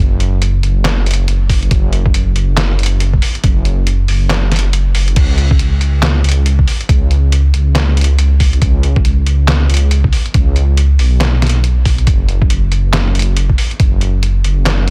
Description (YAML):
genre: deep dubstep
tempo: 139 BPM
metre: 4/4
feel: swing 60% on 16ths, half-time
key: unclear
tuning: A4 = 441 Hz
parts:
  - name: dark detuned saw bass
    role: bass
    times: 0.0-14.9 s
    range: F#1 to C#2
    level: -14 LUFS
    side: equal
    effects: none
  - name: trip hop sampler-style drum kit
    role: drums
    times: 0.2-14.9 s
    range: crash cymbal, handclaps, hi-hat, snare drum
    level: -21 LUFS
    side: equal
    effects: none
  - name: electronic kick drum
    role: drums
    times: 1.5-13.9 s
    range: none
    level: -15 LUFS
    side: equal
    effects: none
room: digital ambience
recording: dense, heavily limited modern master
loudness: -13 LUFS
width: mono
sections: 0.0-14.9 A section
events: kick drops out 4.7-5.2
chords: none